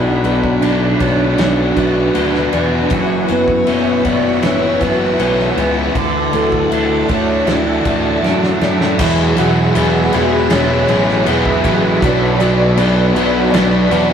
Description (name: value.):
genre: rock, shoegaze and dream pop.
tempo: 79 BPM.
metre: 4/4.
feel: straight.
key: E mixolydian.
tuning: A4 = 440 Hz.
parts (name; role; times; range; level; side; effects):
hollow clarinet-like synth lead; melody; 0.0-14.1 s; A4 to F#5; -21 LUFS; right 1 dB; chorus, slapback echo.
ensemble organ-string; sustained chords; 0.0-14.1 s; D4 to C#6; -21 LUFS; right 2 dB; ensemble chorus.
picked twelve-string acoustic guitar; arpeggios; 0.0-14.1 s; E3 to G#4; -20 LUFS; left 4 dB; none.
overdriven electric guitar; riff; 0.0-14.1 s; F#2 to G#4; -20 LUFS; right 6 dB; none.
thick fuzz guitar; riff; 0.0-14.1 s; E2 to F#4; -21 LUFS; left 4 dB; distortion.
fuzz picked electric bass; bass; 0.0-14.1 s; E1 to F#2; -20 LUFS; equal; overdrive.
loose indie drum kit; drums; 0.2-14.1 s; crash cymbal, kick drum, snare drum; -21 LUFS; left 1 dB; none.
overdriven semi-hollow guitar; riff; 9.0-14.1 s; B2 to E4; -20 LUFS; equal; none.
room: wet studio reverb, RT60 0.6 s.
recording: rough rehearsal-room recording.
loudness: -12 LUFS.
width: side -8 dB against mid.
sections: 0.0-9.0 A section; 9.0-14.1 B section.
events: drum fill 8.2-9.0.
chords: 0.0 Bm; 2.9 F#7sus4; 6.0 Dadd9; 9.0 Eadd9; 12.0 Bm.